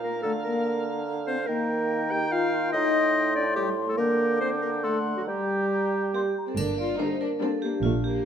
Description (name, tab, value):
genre	cinematic, playful, whimsical film cue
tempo	143 BPM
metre	3/4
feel	straight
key	G minor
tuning	A4 = 441 Hz
part	clear clarinet	second line	0.0-6.3 s	F#4 to G5	-28 LUFS	equal	none
part	mellow hollow concert flute	second line	0.0-6.4 s	Bb5 to D6	-34 LUFS	left 3 dB	none
part	warm cor anglais	second line	0.0-6.3 s	F5 to G5	-34 LUFS	right 4 dB	none
part	mellow bassoon	accompaniment	0.0-6.4 s	A2 to G3	-31 LUFS	right 3 dB	none
part	mellow French horn section	sustained chords	0.0-8.3 s	F#3 to G4	-30 LUFS	left 3 dB	none
part	vibraphone with hard mallets	melody	6.1-8.3 s	F4 to D5	-30 LUFS	right 5 dB	none
part	warm studio violin section	melody	6.1-8.3 s	A3 to F4	-34 LUFS	left 5 dB	none
part	dark studio double bass section	bass	6.6-8.2 s	G1 to Bb1	-30 LUFS	right 4 dB	none
part	warm studio cello section	bass	6.6-8.2 s	G2 to Bb2	-32 LUFS	right 4 dB	none
part	triangle	percussion	6.6-7.4 s	none	-42 LUFS	left 4 dB	none
part	warm studio violin section	second line	7.0-7.7 s	Bb3 to D4	-32 LUFS	left 6 dB	none
part	rich studio viola section	accompaniment	7.0-7.7 s	D3 to G3	-33 LUFS	right 2 dB	none
room	moderate scoring stage reverb, RT60 1.7 s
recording	none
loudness	-23 LUFS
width	side -8 dB against mid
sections	0.0-6.6 A section; 6.6-8.3 A section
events	none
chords	0.2 Bb/D; 1.5 Eb; 2.7 Am7b5; 4.0 Gm/D; 4.8 D7; 5.3 Gm